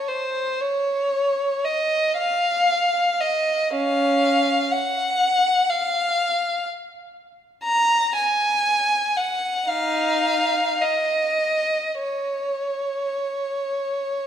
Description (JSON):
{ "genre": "classical, free, expressive piece for unaccompanied violin", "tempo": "46-64 BPM", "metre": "4/4", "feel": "rubato", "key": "unclear", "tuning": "A4 = 440 Hz", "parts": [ { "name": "warm violin", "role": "solo", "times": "0.0-14.3 s", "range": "Db4 to Bb5", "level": "-20 LUFS", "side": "equal", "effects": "none" } ], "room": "moderate concert hall reverb, RT60 2.3 s", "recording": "minimal, uncompressed stereo recording", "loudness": "-19 LUFS", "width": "side -9 dB against mid", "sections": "0.0-14.3 A section", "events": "none", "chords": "none", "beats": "0.62 1.66 2.71 | 3.75 4.74 5.71 6.68 | 7.65 8.66 9.68 10.79 | 12.00 13.30" }